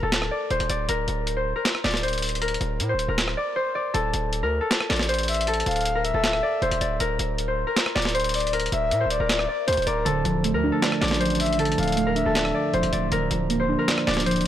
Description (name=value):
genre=hip hop, trap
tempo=157 BPM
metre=4/4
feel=half-time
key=D minor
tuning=A4 = 441 Hz
part: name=concert harp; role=melody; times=0.0-14.5 s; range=A4 to D5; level=-26 LUFS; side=left 2 dB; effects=low-pass filter, digital delay
part: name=distorted 808-style bass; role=bass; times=0.0-14.5 s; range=D1 to A2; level=-28 LUFS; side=right 1 dB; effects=distortion
part: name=boom bap sampler-style drum kit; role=drums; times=0.1-14.5 s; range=handclaps, hi-hat, rim click, snare drum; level=-26 LUFS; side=equal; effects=none
part: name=breathy flute-like synth lead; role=second line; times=5.3-14.5 s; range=Bb4 to F5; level=-27 LUFS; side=left 3 dB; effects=chorus, tremolo, digital delay
part: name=muted felt-like synth keys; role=accompaniment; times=10.1-14.5 s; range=D3 to D5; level=-24 LUFS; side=right 3 dB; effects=chorus, low-pass filter
room=light reverb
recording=blown-out, overdriven recording, overdrive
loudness=-21 LUFS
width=side -11 dB against mid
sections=0.0-3.9 A section; 3.9-14.5 B section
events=none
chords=0.0 D5; 10.1 Dm; 13.1 Bb/D